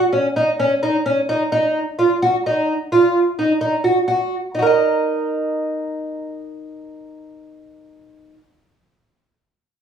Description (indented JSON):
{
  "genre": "progressive instrumental, progressive",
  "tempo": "129 BPM",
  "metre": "5/4",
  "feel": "straight",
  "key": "Eb minor",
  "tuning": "A4 = 439 Hz",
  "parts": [
    { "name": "fingerpicked twelve-string acoustic guitar", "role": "solo", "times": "0.0-8.4 s", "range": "Db4 to Eb5", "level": "-17 LUFS", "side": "right 1 dB", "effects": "none" }
  ],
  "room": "moderate small room reverb, RT60 0.5 s",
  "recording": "studio reverb",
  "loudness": "-16 LUFS",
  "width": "side -8 dB against mid",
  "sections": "0.0-4.5 A section; 4.5-6.9 B section",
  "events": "none",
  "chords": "0.0 Ebm; 4.5 Eb5",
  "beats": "0.35 0.82 1.28 1.75 | 2.22 2.68 3.15 3.61 4.08 | 4.54 5.01 5.47 5.94 6.41"
}